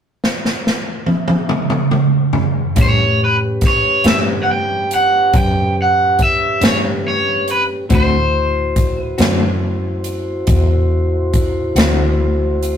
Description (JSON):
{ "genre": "slow blues", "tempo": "47 BPM (dotted quarters)", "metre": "12/8", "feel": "straight", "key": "unclear", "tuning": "A4 = 441 Hz", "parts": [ { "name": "swinging big-band drum kit", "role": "drums", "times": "0.2-12.8 s", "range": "hi-hat, kick drum, snare drum, toms", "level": "-17 LUFS", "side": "equal", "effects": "none" }, { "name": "overdriven semi-hollow guitar", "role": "melody", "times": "2.8-9.6 s", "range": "B4 to G5", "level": "-15 LUFS", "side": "right 1 dB", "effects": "none" }, { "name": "clean electric guitar", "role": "accompaniment", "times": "2.8-12.0 s", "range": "A2 to F#4", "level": "-21 LUFS", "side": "left 3 dB", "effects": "tremolo" }, { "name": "mellow tonewheel organ", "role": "sustained chords", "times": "2.8-12.8 s", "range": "C#4 to C5", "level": "-22 LUFS", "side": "equal", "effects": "slow rotary speaker" }, { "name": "vintage muted fingered electric bass", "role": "bass", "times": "2.8-12.8 s", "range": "D2 to A2", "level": "-19 LUFS", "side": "equal", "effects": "none" } ], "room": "moderate studio reverb, RT60 0.5 s", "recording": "rough rehearsal-room recording, tube saturation", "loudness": "-13 LUFS", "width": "side -8 dB against mid", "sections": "0.0-2.8 A section; 2.8-12.8 B section", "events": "drum fill 0.2-2.8", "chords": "0.0 N.C.; 2.8 A7; 7.9 D7" }